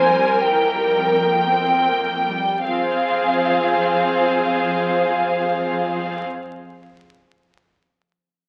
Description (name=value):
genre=classical, slow romantic movement for string orchestra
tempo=26-31 BPM (dotted quarters)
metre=6/8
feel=rubato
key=F minor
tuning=A4 = 440 Hz
part: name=warm symphonic violin section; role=melody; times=0.0-6.2 s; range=F5 to Ab5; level=-23 LUFS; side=equal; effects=none
part: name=warm symphonic violin section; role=second line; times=0.0-6.2 s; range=Ab4 to C5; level=-23 LUFS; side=equal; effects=none
part: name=clear symphonic viola section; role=accompaniment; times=0.0-6.2 s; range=E3 to Bb4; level=-27 LUFS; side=equal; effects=none
part: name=rich symphonic cello section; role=bass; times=0.0-6.2 s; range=F2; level=-32 LUFS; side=equal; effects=none
room=wet recital hall reverb, RT60 1.7 s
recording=very old 78 rpm record, vinyl crackle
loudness=-19 LUFS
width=mono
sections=0.0-2.7 A section; 2.7-7.0 B section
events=slowing down 0.0-2.7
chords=0.0 C7/F; 2.7 Fm